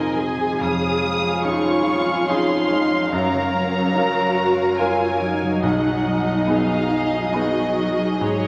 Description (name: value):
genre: cinematic, emotional film score for orchestra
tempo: 72 BPM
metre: 3/4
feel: rubato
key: unclear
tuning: A4 = 440 Hz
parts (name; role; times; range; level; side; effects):
- muted studio violin section; melody; 0.0-8.5 s; Db5 to Eb6; -28 LUFS; equal; none
- muted studio violin section; second line; 0.0-8.5 s; Ab4 to Eb5; -31 LUFS; equal; none
- bright baby grand piano; accompaniment; 0.0-8.5 s; B1 to F5; -27 LUFS; equal; none
- muted studio viola section; accompaniment; 0.0-8.5 s; F3 to F5; -29 LUFS; equal; none
- concert harp; arpeggios; 0.0-8.5 s; F2 to F5; -28 LUFS; equal; none
- muted studio cello section; bass; 0.0-8.5 s; Db4 to Bb4; -27 LUFS; equal; none
room: wet scoring stage reverb, RT60 1.9 s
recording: none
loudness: -20 LUFS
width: mono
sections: 0.0-8.5 A section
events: none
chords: 0.0 Fm7; 0.6 Dbadd9/F; 3.1 Gbmaj7; 5.6 B6